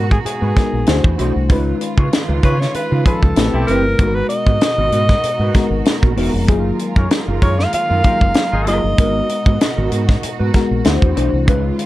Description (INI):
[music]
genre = polished 1980s jazz-funk pop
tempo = 96 BPM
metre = 4/4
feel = swing 54% on 16ths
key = G# dorian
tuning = A4 = 440 Hz
[part]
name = bright alto saxophone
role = melody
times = 0.0-10.5 s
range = G#4 to E#5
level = -20 LUFS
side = equal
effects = none
[part]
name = bell-like FM electric piano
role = accompaniment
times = 0.0-11.9 s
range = E#3 to C5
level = -22 LUFS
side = left 3 dB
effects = analog chorus
[part]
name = rich studio string section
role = sustained chords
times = 0.0-11.9 s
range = B2 to A#4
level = -28 LUFS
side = right 3 dB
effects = none
[part]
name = mellow electric guitar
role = riff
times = 0.0-11.8 s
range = B3 to C#5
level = -25 LUFS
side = right 6 dB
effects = ensemble chorus
[part]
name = fingered electric bass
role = bass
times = 0.0-11.7 s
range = E1 to C#3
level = -18 LUFS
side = equal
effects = none
[part]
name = tight funk drum kit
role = drums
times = 0.1-11.9 s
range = hi-hat, kick drum, snare drum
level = -16 LUFS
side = equal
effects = none
[part]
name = clear horn section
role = second line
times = 2.0-8.8 s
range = C4 to C#5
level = -24 LUFS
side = left 2 dB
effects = none
[sound]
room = little or no reverb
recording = cassette tape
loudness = -13 LUFS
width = side -16 dB against mid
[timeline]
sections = 0.0-11.9 A section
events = none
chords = 0.0 G#m9; 0.9 D9; 1.5 C#9; 3.4 Am9; 4.0 G#m9; 6.5 F#maj13; 9.0 G#m9; 10.9 D9